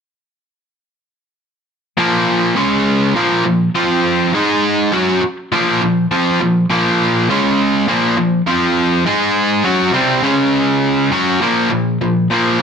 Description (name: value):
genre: rock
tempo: 102 BPM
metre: 4/4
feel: straight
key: Bb minor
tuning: A4 = 437 Hz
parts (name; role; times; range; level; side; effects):
- cranked stack guitar; solo; 2.0-12.6 s; Bb2 to Ab4; -12 LUFS; equal; overdrive
room: moderate large studio reverb, RT60 0.9 s, digital ambience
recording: none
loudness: -12 LUFS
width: side -6 dB against mid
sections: 2.0-11.4 A section; 11.4-12.6 B section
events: none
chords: 2.0 Bb5; 2.6 Db5; 3.1 Bb5; 3.7 F5; 4.3 Ab5; 4.9 Bb5; 7.3 Db5; 7.9 Bb5; 8.5 F5; 9.1 Ab5; 9.6 C5; 10.2 Db5; 11.1 Gb5; 11.4 Bb5